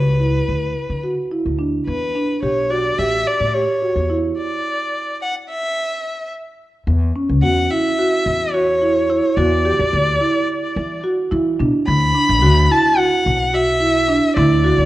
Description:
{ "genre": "contemporary instrumental, chamber music in an uneven meter", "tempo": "216 BPM (eighths)", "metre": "9/8", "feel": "straight", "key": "unclear", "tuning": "A4 = 439 Hz", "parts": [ { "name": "clear violin", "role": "melody", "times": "0.0-14.9 s", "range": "B4 to B5", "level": "-19 LUFS", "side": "left 1 dB", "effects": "none" }, { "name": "marimba with medium mallets", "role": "arpeggios", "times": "0.0-14.9 s", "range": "C#4 to G4", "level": "-20 LUFS", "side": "right 2 dB", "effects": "none" }, { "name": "upright bass", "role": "bass", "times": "0.0-14.9 s", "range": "A1 to E3", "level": "-19 LUFS", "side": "left 1 dB", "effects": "none" } ], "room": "moderate recital hall reverb, RT60 1.6 s", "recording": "worn, warbling old tape, cassette tape, warbly pitch drift", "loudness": "-15 LUFS", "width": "side -15 dB against mid", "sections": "0.0-6.9 A section; 6.9-14.9 B section", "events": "stop 4.4-6.9", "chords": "0.5 D69; 1.9 Em9; 3.0 A7; 4.4 N.C.; 6.9 F#5; 9.4 Gmaj7(no3); 11.9 D6", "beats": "0.20 0.47 0.75 1.03 1.31 1.59 | 1.87 2.15 2.43 2.71 2.98 3.26 3.54 3.82 4.10 | 4.38 4.65 4.93 5.21 5.49 5.76 6.04 6.32 6.60 | 6.88 7.15 7.43 7.71 7.99 8.26 8.54 8.82 9.10 | 9.37 9.65 9.93 10.20 10.48 10.76 11.04 11.31 11.59 | 11.87 12.14 12.42 12.70 12.97 13.25 13.53 13.81 14.08 | 14.36 14.64" }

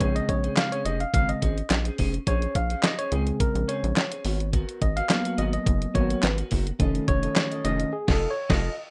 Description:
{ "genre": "early-eighties boogie funk", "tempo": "106 BPM", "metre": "4/4", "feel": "straight", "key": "unclear", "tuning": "A4 = 440 Hz", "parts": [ { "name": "tine electric piano", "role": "accompaniment", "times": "0.0-8.8 s", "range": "Db3 to F5", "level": "-30 LUFS", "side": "equal", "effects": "none" }, { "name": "clean electric guitar", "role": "riff", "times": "0.0-8.7 s", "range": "Cb4 to Eb5", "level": "-39 LUFS", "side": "equal", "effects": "lush chorus" }, { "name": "rubbery square bass", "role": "bass", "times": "0.0-8.7 s", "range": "F1 to Db2", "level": "-30 LUFS", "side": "equal", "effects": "none" }, { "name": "clean 12-bit digital drum machine", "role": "drums", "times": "0.0-8.7 s", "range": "crash cymbal, handclaps, hi-hat, kick drum, snare drum", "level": "-27 LUFS", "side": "equal", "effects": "none" } ], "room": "moderate studio reverb, RT60 0.5 s", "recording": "rough home demo mix", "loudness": "-25 LUFS", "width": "mono", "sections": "0.0-8.9 A section", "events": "tine electric piano solo 0.0-8.9; band accent 7.9-8.9", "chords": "0.0 Bbm9; 4.3 Abm9; 6.8 Faug7", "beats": "| 0.01 0.57 1.14 1.71 | 2.27 2.84 3.40 3.97 | 4.54 5.10 5.67 6.23 | 6.80 7.37 7.93 8.50" }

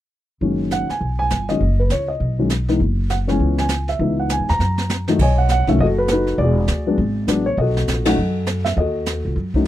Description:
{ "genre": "jazz piano trio", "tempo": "201 BPM", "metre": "4/4", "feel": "swing 61% on 8ths", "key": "B mixolydian", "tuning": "A4 = 440 Hz", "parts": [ { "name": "dark baby grand piano", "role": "melody", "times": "0.4-9.7 s", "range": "D#3 to A#5", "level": "-20 LUFS", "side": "left 1 dB", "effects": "none" }, { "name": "upright bass", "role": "bass", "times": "0.4-9.7 s", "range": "E1 to G#2", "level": "-20 LUFS", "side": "equal", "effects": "none" }, { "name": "jazz brush drum kit", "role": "drums", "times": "0.4-9.7 s", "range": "brushed snare drum, crash cymbal, hi-hat, kick drum, ride cymbal, snare drum", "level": "-24 LUFS", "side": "right 1 dB", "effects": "none" } ], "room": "little or no reverb", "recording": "dry, close 1970s-style studio recording", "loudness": "-17 LUFS", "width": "side -13 dB against mid", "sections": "0.4-5.2 A section; 5.2-9.7 B section", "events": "drum fill 4.6-5.2; band accent 8.0", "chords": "0.4 B69/F#; 2.8 F#7sus4; 4.0 C#m7; 4.6 F#; 5.2 B9; 6.4 E9; 7.6 B7", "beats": "| 0.41 0.71 1.01 1.30 | 1.60 1.90 2.20 2.50 | 2.80 3.10 3.39 3.69 | 3.99 4.29 4.59 4.89 | 5.18 5.48 5.78 6.08 | 6.38 6.68 6.97 7.27 | 7.57 7.87 8.17 8.46 | 8.76 9.06 9.36 9.66" }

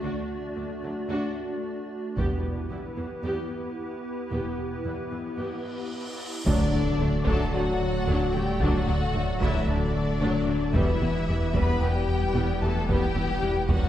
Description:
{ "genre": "cinematic, hybrid orchestral and electronic film score", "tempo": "112 BPM", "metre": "4/4", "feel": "straight", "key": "unclear", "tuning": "A4 = 437 Hz", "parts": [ { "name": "rich symphonic viola section", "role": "accompaniment", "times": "0.0-13.9 s", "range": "D3 to G4", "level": "-34 LUFS", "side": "equal", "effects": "none" }, { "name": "hollow soft pad", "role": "sustained chords", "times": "0.0-13.9 s", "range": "A3 to D5", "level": "-34 LUFS", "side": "equal", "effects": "ensemble chorus" }, { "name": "warm French horn section", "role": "sustained chords", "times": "0.0-13.9 s", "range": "D3 to G4", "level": "-33 LUFS", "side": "equal", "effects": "none" }, { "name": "rich chamber double bass section", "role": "bass", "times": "0.0-13.8 s", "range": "E1 to D2", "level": "-33 LUFS", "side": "right 2 dB", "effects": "none" }, { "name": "warm studio cello section", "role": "bass", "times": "0.0-13.8 s", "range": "D2 to E2", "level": "-35 LUFS", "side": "right 2 dB", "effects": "none" }, { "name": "sub drop, cymbal swell and impact", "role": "sound effects", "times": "0.0, 5.6-8.6 s", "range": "none", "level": "-36 LUFS", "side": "equal", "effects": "none" }, { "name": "taiko ensemble", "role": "drums", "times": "2.2-3.2, 6.5-13.9 s", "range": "none", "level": "-30 LUFS", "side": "equal", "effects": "none" }, { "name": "warm symphonic violin section", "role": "melody", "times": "6.5-13.9 s", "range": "D5 to B5", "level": "-35 LUFS", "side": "left 3 dB", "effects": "none" }, { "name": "rich symphonic violin section", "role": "second line", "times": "6.5-13.9 s", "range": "D4 to B4", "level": "-33 LUFS", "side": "left 4 dB", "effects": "none" }, { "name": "warm trombone section", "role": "sustained chords", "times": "6.5-13.1 s", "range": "F#3 to D4", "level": "-37 LUFS", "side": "right 2 dB", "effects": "none" }, { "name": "smooth gliding synth bass", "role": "riff", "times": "6.5-13.9 s", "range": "D2 to E3", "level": "-30 LUFS", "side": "left 1 dB", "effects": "none" }, { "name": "saturated sub bass", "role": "bass", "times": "6.5-13.9 s", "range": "D1 to E1", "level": "-32 LUFS", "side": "equal", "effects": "none" } ], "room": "wet concert hall reverb, RT60 2.0 s", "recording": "heard from further back in the room", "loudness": "-24 LUFS", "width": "side -12 dB against mid", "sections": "0.0-6.5 A section; 6.5-13.9 B section", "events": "cymbal swell 5.6-6.5; impact 6.5-8.6", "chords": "0.0 D; 2.2 Em; 6.5 D; 10.7 Em", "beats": "| 0.03 0.57 1.10 1.64 | 2.17 2.71 3.25 3.78 | 4.32 4.85 5.39 5.92 | 6.46 7.00 7.53 8.07 | 8.60 9.14 9.67 10.21 | 10.74 11.28 11.82 12.35 | 12.89 13.42" }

